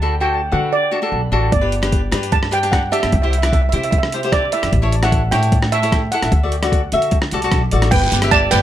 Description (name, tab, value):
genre	calypso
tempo	150 BPM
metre	4/4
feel	straight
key	G major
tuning	A4 = 440 Hz
part	steel pan	melody	0.0-8.6 s	B4 to A5	-20 LUFS	right 3 dB	ping-pong delay
part	cavaquinho	accompaniment	0.0-8.6 s	D4 to E5	-21 LUFS	left 2 dB	none
part	upright bass	bass	0.0-8.6 s	G1 to D3	-20 LUFS	equal	none
part	boom bap sampler-style drum kit	drums	1.5-8.6 s	crash cymbal, hi-hat, kick drum, rim click	-19 LUFS	equal	overdrive
part	guiro	percussion	7.9-8.6 s	none	-24 LUFS	right 6 dB	none
room	moderate small room reverb, RT60 0.5 s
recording	none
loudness	-14 LUFS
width	side -12 dB against mid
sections	0.0-7.9 A section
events	none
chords	0.0 D; 1.5 G; 3.1 C; 4.7 A7; 6.3 D; 7.9 G